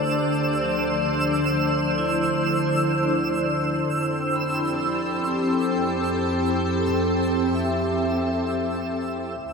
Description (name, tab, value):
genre	ambient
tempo	66 BPM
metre	3/4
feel	straight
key	unclear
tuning	A4 = 442 Hz
part	soft additive organ-like pad	sustained chords	0.0-9.5 s	D3 to D5	-23 LUFS	left 1 dB	ensemble chorus, built-in reverb
part	vibraphone with medium hard mallets	arpeggios	0.0-9.5 s	F3 to B5	-28 LUFS	equal	ping-pong delay
part	dark chamber double bass section	bass	0.0-9.5 s	D2 to F2	-33 LUFS	equal	none
part	twinkling granular texture	texture	0.0-9.4 s	E6	-29 LUFS	right 3 dB	built-in reverb
room	wet huge ambient reverb, RT60 8.6 s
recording	none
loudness	-21 LUFS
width	side -4 dB against mid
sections	0.0-9.4 A section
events	fade-in on vibraphone 0.0-9.4; fade-in on double bass section 0.0-9.4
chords	0.0 Dm7; 3.9 Fmaj7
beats	0.25 | 1.17 2.08 2.98 | 3.88 4.79 5.70 | 6.61 7.52 8.45 | 9.39